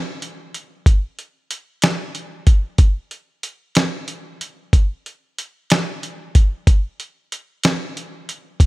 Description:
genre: pop.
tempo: 62 BPM (dotted quarters).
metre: 6/8.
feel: straight.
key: none.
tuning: none.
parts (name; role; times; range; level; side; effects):
lo-fi sampler-style drum kit; drums; 0.2-8.7 s; hi-hat, kick drum, snare drum; -15 LUFS; equal; none.
room: little or no reverb.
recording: none.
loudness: -16 LUFS.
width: side -21 dB against mid.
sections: 0.0-8.7 A section.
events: none.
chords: none.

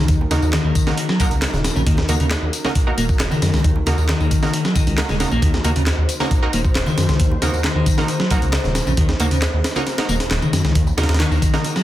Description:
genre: breakbeat, breaks.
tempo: 135 BPM.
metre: 4/4.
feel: straight.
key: Eb dorian.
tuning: A4 = 436 Hz.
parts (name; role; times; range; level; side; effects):
dark analog pad; sustained chords; 0.0-11.8 s; Eb4 to C5; -30 LUFS; equal; chorus, phaser, sidechain pumping.
clean electric guitar; riff; 0.0-11.8 s; Db3 to Db4; -23 LUFS; left 2 dB; tube saturation.
dark detuned saw bass; bass; 0.0-11.4 s; Eb1 to Gb2; -20 LUFS; equal; none.
breakbeat sampler-style drum kit; drums; 0.1-11.8 s; hi-hat, kick drum, snare drum; -20 LUFS; equal; none.
electronic tambourine and handclaps; drums; 0.1-11.8 s; none; -29 LUFS; left 2 dB; none.
bongos and congas; percussion; 0.1-11.6 s; none; -30 LUFS; right 1 dB; none.
orchestra-hit-like synth stab; stabs; 0.3-11.6 s; Bb3 to Bb4; -26 LUFS; right 3 dB; built-in reverb, dub echo.
room: light reverb.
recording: dense, heavily limited modern master.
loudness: -16 LUFS.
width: side -13 dB against mid.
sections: 0.0-11.8 A section.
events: break 11.6.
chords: 0.0 Ebm.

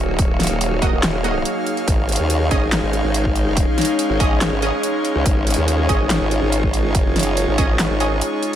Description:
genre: heavy wobble dubstep.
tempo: 142 BPM.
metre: 4/4.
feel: half-time.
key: unclear.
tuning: A4 = 440 Hz.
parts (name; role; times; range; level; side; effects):
evolving wavetable pad; sustained chords; 0.0-8.6 s; Gb3 to Gb4; -24 LUFS; left 1 dB; chorus, built-in reverb, sidechain pumping.
formant-sweep wobble bass; bass; 0.0-8.2 s; Eb1 to Eb2; -21 LUFS; equal; chorus, overdrive.
airy breathy pad; texture; 0.0-8.6 s; Eb4 to F5; -24 LUFS; equal; chorus, sidechain pumping.
dubstep drum kit; drums; 0.2-8.6 s; handclaps, hi-hat, snare drum; -22 LUFS; equal; overdrive.
electronic kick drum; drums; 0.2-7.7 s; none; -20 LUFS; equal; overdrive.
orchestra-hit-like synth stab; stabs; 0.8-8.1 s; Bb3 to Eb5; -26 LUFS; right 3 dB; built-in reverb, dub echo.
room: light reverb.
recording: none.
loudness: -16 LUFS.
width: side -10 dB against mid.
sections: 0.0-8.6 A section.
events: break 8.2-8.6.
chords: 0.0 Ebm; 1.9 Absus4.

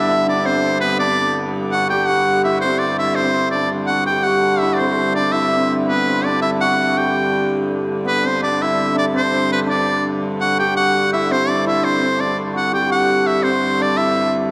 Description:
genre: medieval dance.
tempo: 111 BPM (dotted quarters).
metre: 6/8.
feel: straight.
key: G major.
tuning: A4 = 440 Hz.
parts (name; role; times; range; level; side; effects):
edgy shawm; melody; 0.0-14.4 s; B4 to G5; -21 LUFS; equal; none.
hammered dulcimer; second line; 0.0-14.5 s; B3 to G4; -22 LUFS; equal; none.
clear hurdy-gurdy; drone; 0.0-14.5 s; G2 to D3; -26 LUFS; equal; none.
room: wet concert hall reverb, RT60 2.2 s.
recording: dark, warm production.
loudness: -18 LUFS.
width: mono.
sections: 0.0-8.1 A section; 8.1-14.5 A section.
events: none.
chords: none.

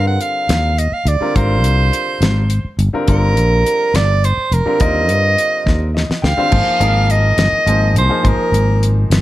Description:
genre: electric jazz fusion.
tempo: 70 BPM (dotted quarters).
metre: 6/8.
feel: straight.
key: Eb major.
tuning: A4 = 440 Hz.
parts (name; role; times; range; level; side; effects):
bright soprano saxophone; melody; 0.0-8.9 s; Bb4 to Gb5; -17 LUFS; right 2 dB; none.
clear grand piano; accompaniment; 0.0-9.2 s; D3 to G5; -21 LUFS; left 2 dB; none.
sustaining fretless electric bass; bass; 0.0-9.2 s; F1 to G2; -15 LUFS; equal; none.
damped 70s drum kit; drums; 0.2-9.2 s; crash cymbal, hi-hat, kick drum, snare drum; -19 LUFS; left 1 dB; none.
room: light reverb.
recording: dark, warm production.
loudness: -12 LUFS.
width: side -15 dB against mid.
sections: 0.0-6.5 A section; 6.5-9.2 B section.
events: drum fill 5.7-6.5; grand piano fill 5.7-6.5.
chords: 0.0 Ebmaj9; 1.4 Abmaj9; 3.1 Gm7; 4.8 Ebmaj9; 6.5 Abadd9.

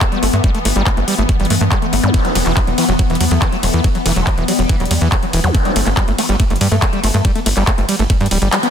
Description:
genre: psychedelic trance.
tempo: 141 BPM.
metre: 4/4.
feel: straight.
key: unclear.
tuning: A4 = 440 Hz.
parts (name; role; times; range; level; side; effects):
vowel-sweep wobble bass; second line; 0.0-7.8 s; E3 to B3; -27 LUFS; left 3 dB; wide subtle chorus, sidechain pumping, high-pass filter, tape echo.
evolving wavetable pad; sustained chords; 0.0-8.7 s; E3 to B3; -21 LUFS; left 2 dB; ensemble chorus, built-in reverb, sidechain pumping.
screaming distorted acid line; riff; 0.0-8.7 s; E3 to B3; -21 LUFS; moving between left 4 dB and right 5 dB; distortion, chorus, auto-pan, sidechain pumping, digital delay.
electronic kick drum; drums; 0.0-8.2 s; none; -16 LUFS; equal; none.
techno drum kit; drums; 0.0-8.7 s; handclaps, hi-hat, ride cymbal; -21 LUFS; left 1 dB; none.
tight sequencer bass; bass; 0.2-8.5 s; D1 to G2; -16 LUFS; equal; none.
zap; sound effects; 2.0-2.1, 5.4-5.5 s; none; -23 LUFS; equal; none.
room: digital ambience.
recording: dense, heavily limited modern master.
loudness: -13 LUFS.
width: side -8 dB against mid.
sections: 0.0-8.7 A section.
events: kick drops out 8.5; band accent 8.5.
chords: 0.0 G69; 2.1 E5; 5.5 G5.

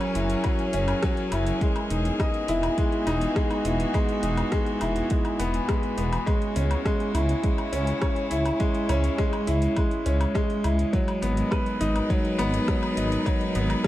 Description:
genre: piano and strings electronica.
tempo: 103 BPM.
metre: 4/4.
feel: straight.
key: unclear.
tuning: A4 = 440 Hz.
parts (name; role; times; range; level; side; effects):
clear string quartet; sustained chords; 0.0-13.9 s; C#3 to B4; -31 LUFS; equal; sidechain pumping.
bright concert grand piano; riff; 0.0-13.9 s; F#3 to D#5; -26 LUFS; equal; tape echo.
deep house drum kit; drums; 0.0-13.9 s; hi-hat, rim click, woodblock; -35 LUFS; left 2 dB; overdrive, small room ambience.
dark detuned saw bass; bass; 0.2-13.8 s; E1 to C#2; -26 LUFS; equal; sidechain pumping.
electronic kick drum; drums; 0.4-13.9 s; none; -26 LUFS; equal; overdrive, small room ambience.
room: moderate recital hall reverb, RT60 1.6 s.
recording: dark, warm production.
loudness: -22 LUFS.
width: side -14 dB against mid.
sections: 0.0-13.9 A section.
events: none.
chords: 0.0 F#7; 1.6 Emaj7; 6.3 C#m7; 10.9 G#m7.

